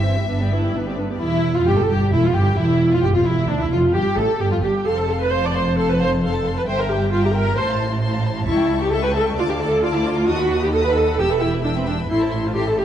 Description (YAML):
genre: quick classical-period movement for string orchestra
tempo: 132 BPM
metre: 4/4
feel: straight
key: unclear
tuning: A4 = 441 Hz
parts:
  - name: warm chamber violin section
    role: melody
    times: 0.0-12.8 s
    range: D4 to E6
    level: -30 LUFS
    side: left 5 dB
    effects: none
  - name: warm symphonic violin section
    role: second line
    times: 0.0-12.8 s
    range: D4 to D6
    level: -28 LUFS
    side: left 4 dB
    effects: none
  - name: warm chamber viola section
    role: accompaniment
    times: 0.0-12.8 s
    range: E3 to D5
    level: -20 LUFS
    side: equal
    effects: none
  - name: rich studio double bass section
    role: bass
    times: 0.0-12.8 s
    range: E1 to D#2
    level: -24 LUFS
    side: right 2 dB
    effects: none
  - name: warm chamber cello section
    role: bass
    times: 0.0-12.8 s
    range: C#2 to A2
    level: -24 LUFS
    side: right 1 dB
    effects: none
room: moderate scoring stage reverb, RT60 1.5 s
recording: dark, warm production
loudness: -17 LUFS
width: side -10 dB against mid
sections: 0.0-1.2 A section; 1.2-12.8 B section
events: none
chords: 0.3 G; 1.2 Fmaj9/E; 3.0 Dmadd9/E; 3.9 Fadd9; 4.9 F; 6.7 Edim/G; 7.6 F/A; 8.5 A7/C#; 9.4 Dm; 10.3 B7/D#; 11.2 Em; 12.1 Am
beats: 0.28 0.75 | 1.21 1.67 2.12 2.58 | 3.03 3.49 3.94 4.40 | 4.85 5.31 5.76 6.21 | 6.66 7.11 7.56 8.01 | 8.46 8.91 9.36 9.82 | 10.27 10.72 11.18 11.63 | 12.09 12.54